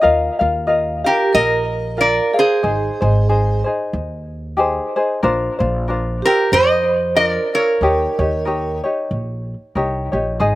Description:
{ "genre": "Hawaiian", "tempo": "92 BPM", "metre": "4/4", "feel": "swing 57% on 8ths", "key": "Eb major", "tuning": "A4 = 439 Hz", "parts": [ { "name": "tenor ukulele", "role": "accompaniment", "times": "0.0-10.6 s", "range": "D4 to F5", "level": "-19 LUFS", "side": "left 2 dB", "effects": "slapback echo" }, { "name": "upright bass", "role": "bass", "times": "0.0-10.6 s", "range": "Ab1 to F2", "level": "-21 LUFS", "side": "right 1 dB", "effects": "none" }, { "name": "vibraphone with medium mallets", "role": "second line", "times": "1.0-8.8 s", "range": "G4 to C5", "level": "-20 LUFS", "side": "right 3 dB", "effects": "slapback echo" }, { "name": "lap resonator guitar", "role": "melody", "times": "1.1-8.8 s", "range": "G4 to Eb5", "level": "-17 LUFS", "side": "equal", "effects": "none" } ], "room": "little or no reverb", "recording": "recorded outdoors, with no room sound", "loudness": "-15 LUFS", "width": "side -16 dB against mid", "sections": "0.0-10.6 A section", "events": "none", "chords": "0.0 Ebsus2; 2.6 Abmaj7; 5.2 Bbadd9; 7.8 Eb7" }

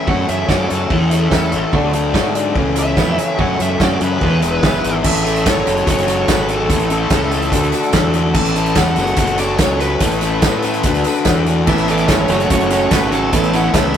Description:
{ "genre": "indie rock", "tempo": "145 BPM", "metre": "4/4", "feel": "straight", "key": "A major", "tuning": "A4 = 438 Hz", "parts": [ { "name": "nasal lead guitar with a parked wah", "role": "melody", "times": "0.0-14.0 s", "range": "A4 to A5", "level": "-22 LUFS", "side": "equal", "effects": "overdrive" }, { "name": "lush unison pad", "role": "sustained chords", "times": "0.0-14.0 s", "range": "G#4 to D6", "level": "-27 LUFS", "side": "right 2 dB", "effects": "chorus" }, { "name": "biting overdriven guitar", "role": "riff", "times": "0.0-14.0 s", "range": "F#2 to A4", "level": "-18 LUFS", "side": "left 3 dB", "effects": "none" }, { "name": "clean electric guitar", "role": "riff", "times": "0.1-4.9, 11.7-14.0 s", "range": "F#2 to G#4", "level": "-21 LUFS", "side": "right 5 dB", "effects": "none" }, { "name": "fuzz fingered electric bass", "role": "bass", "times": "0.1-14.0 s", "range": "E1 to A2", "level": "-19 LUFS", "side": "right 1 dB", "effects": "overdrive" }, { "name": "loose indie drum kit", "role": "drums", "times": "0.1-14.0 s", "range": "crash cymbal, hi-hat, kick drum, snare drum", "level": "-18 LUFS", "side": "right 1 dB", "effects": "none" }, { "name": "tambourine", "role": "percussion", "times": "0.5-13.8 s", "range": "none", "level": "-35 LUFS", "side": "right 5 dB", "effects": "none" } ], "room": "light reverb", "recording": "rough rehearsal-room recording", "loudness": "-13 LUFS", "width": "side -9 dB against mid", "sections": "0.0-5.0 A section; 5.0-14.0 B section", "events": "lead electric guitar solo 0.0-5.0", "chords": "0.1 F#m; 0.9 Aadd9/E; 1.7 D; 2.6 Aadd9/C#; 3.4 F#m; 4.2 E; 5.0 Aadd9; 5.7 F#m; 6.7 Aadd9; 7.5 Dadd9; 8.4 Aadd9; 9.0 F#m; 10.0 Aadd9; 10.8 Dadd9; 11.7 Aadd9; 12.3 F#m; 13.3 Aadd9" }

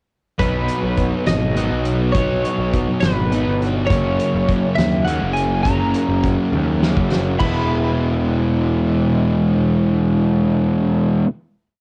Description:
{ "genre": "indie rock", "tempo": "68 BPM (dotted quarters)", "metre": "6/8", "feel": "straight", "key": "E lydian", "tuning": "A4 = 439 Hz", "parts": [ { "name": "twelve-string electric guitar", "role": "melody", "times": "0.4-11.2 s", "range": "B4 to B5", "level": "-26 LUFS", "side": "equal", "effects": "tremolo, cassette tape" }, { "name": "fuzz guitar", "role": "riff", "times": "0.4-11.3 s", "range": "F#2 to E4", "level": "-21 LUFS", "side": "equal", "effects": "distortion, cassette tape" }, { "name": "fuzz picked electric bass", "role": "bass", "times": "0.4-11.2 s", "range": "E1 to D#2", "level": "-24 LUFS", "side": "equal", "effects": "overdrive" }, { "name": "loose indie drum kit", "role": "drums", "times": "0.4-7.5 s", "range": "crash cymbal, hi-hat, kick drum, snare drum, toms", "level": "-25 LUFS", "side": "equal", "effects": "cassette tape" } ], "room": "light reverb", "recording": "home recording on cassette", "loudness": "-18 LUFS", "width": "mono", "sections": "0.4-7.4 pre-chorus; 7.4-10.9 final chord", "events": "drum fill 6.5-7.4", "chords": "0.4 B; 3.9 F#; 7.4 E" }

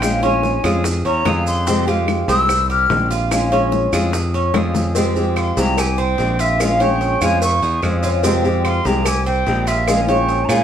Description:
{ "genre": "latin, Cuban son and guajira", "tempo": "146 BPM", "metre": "4/4", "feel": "straight", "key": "F harmonic minor", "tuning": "A4 = 436 Hz", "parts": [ { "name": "silver concert flute", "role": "melody", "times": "0.0-10.6 s", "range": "E5 to F6", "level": "-20 LUFS", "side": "left 1 dB", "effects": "none" }, { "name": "fingerpicked old ladder-braced acoustic guitar", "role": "accompaniment", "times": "0.0-10.6 s", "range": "C3 to G4", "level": "-20 LUFS", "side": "left 2 dB", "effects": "none" }, { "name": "Cuban tres", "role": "arpeggios", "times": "0.0-10.6 s", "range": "C4 to Db5", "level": "-22 LUFS", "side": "right 3 dB", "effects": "none" }, { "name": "modern bright picked electric bass", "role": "bass", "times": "0.0-10.6 s", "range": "Bb1 to Bb2", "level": "-20 LUFS", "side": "equal", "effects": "none" }, { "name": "bongos and cowbell", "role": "percussion", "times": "0.0-10.5 s", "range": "none", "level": "-26 LUFS", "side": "left 4 dB", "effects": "none" }, { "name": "claves", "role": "percussion", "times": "0.0-10.6 s", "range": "none", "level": "-30 LUFS", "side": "right 2 dB", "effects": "none" }, { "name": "maracas", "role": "percussion", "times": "0.0-10.6 s", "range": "none", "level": "-30 LUFS", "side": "right 3 dB", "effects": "none" }, { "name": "nylon-string guitar", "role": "second line", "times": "7.8-8.5 s", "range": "C5 to F5", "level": "-26 LUFS", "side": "left 4 dB", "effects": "none" } ], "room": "wet studio reverb, RT60 0.8 s", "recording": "band playing live in one room", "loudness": "-15 LUFS", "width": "side -9 dB against mid", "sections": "0.0-5.0 A section; 5.0-10.6 B section", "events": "flute solo 0.0-5.0; drum fill 4.5-5.0", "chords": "0.0 Bbm7; 1.7 Fmadd9; 3.3 Bbm7; 5.0 Fmadd9; 6.6 Bbm7; 8.2 Fmadd9; 9.9 Bbm7" }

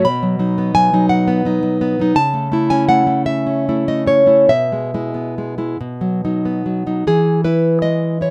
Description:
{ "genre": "romantic piece for solo classical guitar", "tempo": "46-58 BPM (dotted quarters)", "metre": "6/8", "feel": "rubato", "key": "E major", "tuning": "A4 = 440 Hz", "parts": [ { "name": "nylon-string guitar", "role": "solo", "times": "0.0-8.3 s", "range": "B2 to B5", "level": "-16 LUFS", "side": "equal", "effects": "none" } ], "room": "light reverb", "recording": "none", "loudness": "-16 LUFS", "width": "mono", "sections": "0.0-7.1 A section; 7.1-8.3 B section", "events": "none", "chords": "0.1 B; 2.2 A/C#; 4.5 E/B; 5.8 B; 7.1 E" }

